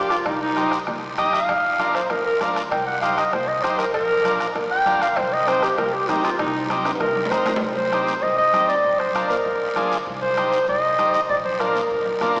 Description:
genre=latin, cumbia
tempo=196 BPM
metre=4/4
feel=straight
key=C minor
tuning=A4 = 440 Hz
part: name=warm clarinet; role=melody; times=0.0-12.4 s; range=Eb4 to G5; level=-20 LUFS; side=equal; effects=none
part: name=overdriven combo organ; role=accompaniment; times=0.0-12.4 s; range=C4 to Eb5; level=-24 LUFS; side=equal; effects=none
part: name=upright bass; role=bass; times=0.0-12.4 s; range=Bb1 to Eb2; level=-38 LUFS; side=equal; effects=none
part: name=bombo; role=percussion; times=0.1-12.4 s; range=none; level=-31 LUFS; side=equal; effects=none
part: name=guiro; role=percussion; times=0.1-12.4 s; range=none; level=-36 LUFS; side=equal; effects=none
part: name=congas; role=percussion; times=0.3-12.4 s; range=none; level=-37 LUFS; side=equal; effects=none
part: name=cowbell and timbales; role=percussion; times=0.3-7.6 s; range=none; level=-32 LUFS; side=equal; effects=none
room=wet cathedral reverb, RT60 4.5 s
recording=recorded in a church or concert hall, small speaker sound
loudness=-18 LUFS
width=side -35 dB against mid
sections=0.0-7.6 A section; 7.6-12.4 B section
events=clarinet solo 0.0-7.6; drum fill 6.9-7.6, 12.1-12.4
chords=0.3 Cm; 1.5 Bb; 2.7 Cm; 3.9 Bb; 5.2 Cm; 8.8 Bb; 10.1 Cm; 11.3 Bb

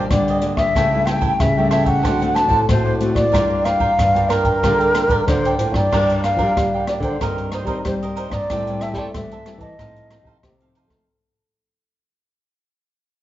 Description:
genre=samba and choro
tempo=93 BPM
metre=4/4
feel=straight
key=G minor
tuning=A4 = 440 Hz
part: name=breathy concert flute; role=melody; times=0.0-10.6 s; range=Bb4 to A5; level=-20 LUFS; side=equal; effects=none
part: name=cavaquinho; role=accompaniment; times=0.0-11.1 s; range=D4 to A5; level=-27 LUFS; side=right 4 dB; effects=none
part: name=nylon-string guitar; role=accompaniment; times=0.0-11.1 s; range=A2 to Bb4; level=-26 LUFS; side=left 3 dB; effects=none
part: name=nylon-string guitar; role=bass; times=0.0-11.0 s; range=G2 to A3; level=-23 LUFS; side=equal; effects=none
part: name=open jazz drum kit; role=drums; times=0.1-11.1 s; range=crash cymbal, hi-hat, kick drum, rim click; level=-23 LUFS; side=equal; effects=none
room=wet recital hall reverb, RT60 1.6 s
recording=recorded in a church or concert hall, nothing above 7.6 kHz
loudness=-16 LUFS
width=side -14 dB against mid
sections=0.0-5.9 A section; 5.9-11.1 B section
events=fade-out 5.9-11.1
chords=0.0 Ebmaj7; 0.8 A7/C#; 2.1 D7; 3.3 Gm7; 7.2 Cm7/G; 8.5 Am7; 9.8 F7/A

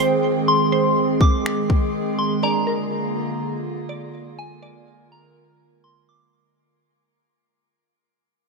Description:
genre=hip hop, atmospheric cloud-rap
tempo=123 BPM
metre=4/4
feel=half-time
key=unclear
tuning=A4 = 441 Hz
part: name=warbly tape-like pad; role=sustained chords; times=0.0-6.3 s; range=D3 to G5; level=-22 LUFS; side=right 2 dB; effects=chorus, built-in reverb, sidechain pumping
part: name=glassy wavetable pluck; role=arpeggios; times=0.0-6.1 s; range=Ab4 to D5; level=-27 LUFS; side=right 3 dB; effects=chorus, low-pass filter, digital delay
part: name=worn celesta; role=texture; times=0.0-6.3 s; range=C4 to Ab5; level=-39 LUFS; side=left 4 dB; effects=none
part: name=soft synth bell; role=melody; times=0.5-6.3 s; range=Ab5 to D6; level=-24 LUFS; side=left 2 dB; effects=chorus, phaser, low-pass filter, digital delay
part: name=trap drum kit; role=drums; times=1.2-1.8 s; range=finger snaps, kick drum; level=-18 LUFS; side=left 1 dB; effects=none
room=light reverb, digital ambience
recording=none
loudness=-18 LUFS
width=side -3 dB against mid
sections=0.0-6.3 A section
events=fade-out 0.0-6.3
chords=0.0 Abmaj7; 2.4 Bb7

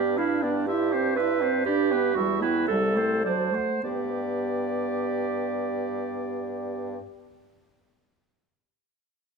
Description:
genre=quick classical-period movement for wind quintet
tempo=99-122 BPM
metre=2/4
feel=rubato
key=G major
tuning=A4 = 440 Hz
part: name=mellow hollow concert flute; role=melody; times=0.0-7.0 s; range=F#5 to C6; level=-40 LUFS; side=left 10 dB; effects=none
part: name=warm oboe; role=second line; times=0.0-7.0 s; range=B4 to F5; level=-34 LUFS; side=left 2 dB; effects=none
part: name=bright clarinet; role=accompaniment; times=0.0-7.0 s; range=D4 to C5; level=-27 LUFS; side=right 7 dB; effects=none
part: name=mellow French horn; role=accompaniment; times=0.0-7.0 s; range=F#3 to E4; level=-30 LUFS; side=left 1 dB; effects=none
part: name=warm bassoon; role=bass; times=0.0-7.0 s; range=C2 to G2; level=-33 LUFS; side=right 1 dB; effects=none
room=moderate recital hall reverb, RT60 1.6 s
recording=minimal, uncompressed stereo recording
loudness=-24 LUFS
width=side -4 dB against mid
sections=0.0-3.8 A section; 3.8-6.2 B section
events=slowing down 1.2-3.8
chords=0.0 G7; 0.7 C/G; 1.7 G; 2.2 Em; 2.7 Am7/C; 3.2 D7; 3.8 G

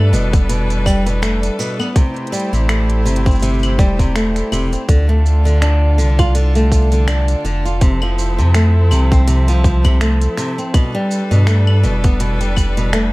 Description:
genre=folktronica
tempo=82 BPM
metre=4/4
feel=swing 56% on 16ths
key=D dorian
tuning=A4 = 440 Hz
part: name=rich string quartet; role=sustained chords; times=0.0-13.1 s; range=D3 to C5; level=-24 LUFS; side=equal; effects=none
part: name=flamenco guitar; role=arpeggios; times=0.0-13.1 s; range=B2 to F4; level=-20 LUFS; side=equal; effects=digital delay
part: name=warm sub bass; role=bass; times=0.0-13.1 s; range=E1 to G2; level=-14 LUFS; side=equal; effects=none
part: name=organic electronic drum kit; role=drums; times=0.1-13.1 s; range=claves, finger snaps, hi-hat, shaker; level=-26 LUFS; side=equal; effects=none
part: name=electronic kick drum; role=drums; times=0.3-12.7 s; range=none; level=-13 LUFS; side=equal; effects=none
room=light reverb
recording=vinyl crackle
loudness=-12 LUFS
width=side -21 dB against mid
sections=0.0-13.1 A section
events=none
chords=0.0 Gadd9; 2.0 Am7; 4.9 Dm; 7.8 Fmaj7; 10.7 Gadd9

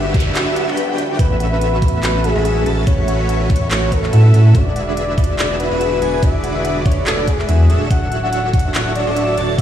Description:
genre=future bass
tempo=143 BPM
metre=4/4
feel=swing 55% on 16ths, half-time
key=A major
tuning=A4 = 440 Hz
part: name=dark symphonic string section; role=sustained chords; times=0.0-9.6 s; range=C#3 to E5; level=-28 LUFS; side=right 1 dB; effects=sidechain pumping
part: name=airy dreamy lead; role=arpeggios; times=0.0-9.6 s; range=C#5 to A5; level=-29 LUFS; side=right 1 dB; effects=chorus, phaser, sidechain pumping, digital delay
part: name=thumb-piano-like synth pluck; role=arpeggios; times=0.0-9.6 s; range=F#4 to G5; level=-29 LUFS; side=left 2 dB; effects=chorus, sidechain pumping, digital delay
part: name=dense compressed supersaw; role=riff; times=0.0-9.6 s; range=C#4 to A5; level=-22 LUFS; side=right 1 dB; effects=sidechain pumping, digital delay
part: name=saturated sub bass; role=bass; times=0.0-9.6 s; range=D1 to A2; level=-17 LUFS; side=equal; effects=sidechain pumping
part: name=noise sweep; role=sound effects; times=0.0-1.2 s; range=none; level=-26 LUFS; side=equal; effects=none
part: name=electronic kick drum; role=drums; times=0.1-9.6 s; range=none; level=-16 LUFS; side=equal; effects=small room ambience
part: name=trap drum kit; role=drums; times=0.1-9.6 s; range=handclaps, hi-hat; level=-24 LUFS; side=right 1 dB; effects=small room ambience
part: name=soft octave-layered synth lead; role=melody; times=1.2-9.6 s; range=G#4 to F#5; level=-21 LUFS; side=left 2 dB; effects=chorus, sidechain pumping, digital delay
room=little or no reverb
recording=played on a big sound system in a bare room, stone room reverb, studio reverb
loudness=-13 LUFS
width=side -10 dB against mid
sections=0.0-9.6 A section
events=noise sweep 0.0-1.2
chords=0.0 Gmaj7; 1.2 A69; 4.5 E9; 7.7 Dmaj9

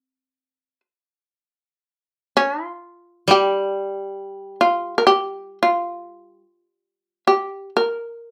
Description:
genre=japanese traditional, Japanese chamber music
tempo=free time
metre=none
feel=none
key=unclear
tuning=A4 = 440 Hz
part: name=shamisen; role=melody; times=0.0-8.3 s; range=C4 to Bb4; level=-20 LUFS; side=equal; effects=none
part: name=koto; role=accompaniment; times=3.3-6.4 s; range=G3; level=-24 LUFS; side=equal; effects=none
room=light reverb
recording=close, detailed microphones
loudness=-21 LUFS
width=mono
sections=0.0-1.1 A section; 1.1-8.3 A section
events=none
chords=none

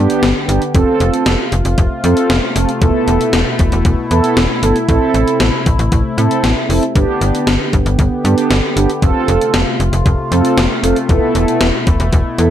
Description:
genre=synth-pop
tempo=116 BPM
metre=4/4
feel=straight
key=unclear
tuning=A4 = 440 Hz
part: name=mellow synth brass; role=accompaniment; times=0.0-12.5 s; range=B3 to A4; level=-16 LUFS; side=right 2 dB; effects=chorus
part: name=sweeping resonant pad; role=sustained chords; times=0.0-12.5 s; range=B2 to G4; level=-20 LUFS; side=left 2 dB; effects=chorus, phaser
part: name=slap-like FM bass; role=bass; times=0.0-12.5 s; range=E1 to A2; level=-15 LUFS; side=equal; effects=none
part: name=impact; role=sound effects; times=0.2-0.7 s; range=none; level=barely audible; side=none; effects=none
part: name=gated 80s digital drum machine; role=drums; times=0.1-12.5 s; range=hi-hat, kick drum, snare drum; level=-16 LUFS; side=left 1 dB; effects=gated reverb, gated reverb snare
room=light reverb, digital ambience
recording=none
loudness=-11 LUFS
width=side -10 dB against mid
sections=0.0-12.5 A section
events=impact 0.0-0.7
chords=0.0 G; 0.7 F; 2.8 Esus4; 4.9 Am; 7.0 G; 9.0 F; 11.1 Esus4

